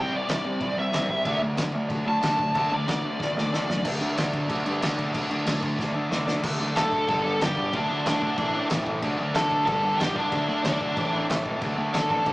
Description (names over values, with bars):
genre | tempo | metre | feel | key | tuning
punk rock | 185 BPM | 4/4 | straight | unclear | A4 = 440 Hz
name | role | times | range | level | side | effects
biting lead guitar | melody | 0.0-3.8, 6.8-12.3 s | D4 to A5 | -25 LUFS | equal | overdrive
cranked stack guitar | riff | 0.0-12.3 s | G2 to D4 | -31 LUFS | left 1 dB | overdrive
overdriven semi-hollow guitar | riff | 0.0-12.3 s | G2 to D4 | -33 LUFS | right 1 dB | none
sludgy distorted guitar | riff | 0.0-12.3 s | G2 to E4 | -34 LUFS | equal | overdrive
fuzz picked electric bass | bass | 0.0-12.3 s | G1 to D3 | -32 LUFS | equal | overdrive
loose indie drum kit | drums | 0.3-12.3 s | crash cymbal, kick drum, snare drum | -29 LUFS | equal | none
room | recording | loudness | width
wet booth ambience, RT60 0.2 s | rough rehearsal-room recording, small speaker sound | -23 LUFS | side -20 dB against mid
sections
0.0-3.8 A section; 3.8-6.4 B section; 6.4-12.3 C section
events
lead electric guitar solo 0.0-3.8; drum fill 3.2-3.8, 5.8-6.4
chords
0.0 C; 1.3 D; 7.1 G; 7.7 D; 8.4 Am; 9.0 D; 9.7 G; 10.3 D; 11.0 Am; 11.6 D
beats
0.29 0.61 0.93 | 1.26 1.58 1.90 2.23 | 2.55 2.87 3.20 3.52 | 3.85 4.17 4.49 4.82 | 5.14 5.47 5.79 6.11 | 6.44 6.76 7.08 7.41 | 7.73 8.06 8.38 8.70 | 9.03 9.35 9.67 10.00 | 10.32 10.64 10.97 11.29 | 11.61 11.94 12.26